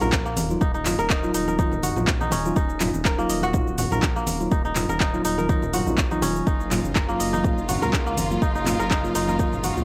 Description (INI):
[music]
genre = afro house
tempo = 123 BPM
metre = 4/4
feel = swing 55% on 16ths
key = Eb minor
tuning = A4 = 439 Hz
[part]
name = kora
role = arpeggios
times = 0.0-9.8 s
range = Bb3 to Eb5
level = -29 LUFS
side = equal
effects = sidechain pumping, tape echo
[part]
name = mellow tine electric piano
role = stabs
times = 0.0-9.8 s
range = Gb3 to F4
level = -30 LUFS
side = equal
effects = sidechain pumping, tape echo
[part]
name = dark detuned saw bass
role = bass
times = 0.0-9.8 s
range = Eb1 to Db2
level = -33 LUFS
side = equal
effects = sidechain pumping
[part]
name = deep house drum kit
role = drums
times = 0.0-9.8 s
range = handclaps, hi-hat, shaker, toms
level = -30 LUFS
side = equal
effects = overdrive
[part]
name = congas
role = percussion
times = 0.0-9.8 s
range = none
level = -33 LUFS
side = equal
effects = none
[part]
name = impact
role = sound effects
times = 0.0-0.6 s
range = none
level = barely audible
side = none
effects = none
[part]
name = electronic kick drum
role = drums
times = 0.1-9.5 s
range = none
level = -25 LUFS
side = equal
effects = none
[part]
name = clear symphonic string section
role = sustained chords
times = 6.5-9.8 s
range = Db3 to F5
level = -35 LUFS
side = equal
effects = sidechain pumping
[sound]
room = light reverb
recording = dry, gritty hardware recording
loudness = -23 LUFS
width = mono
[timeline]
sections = 0.0-9.8 A section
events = impact 0.0-0.6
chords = 0.0 Ebmadd9; 6.5 Gbmaj7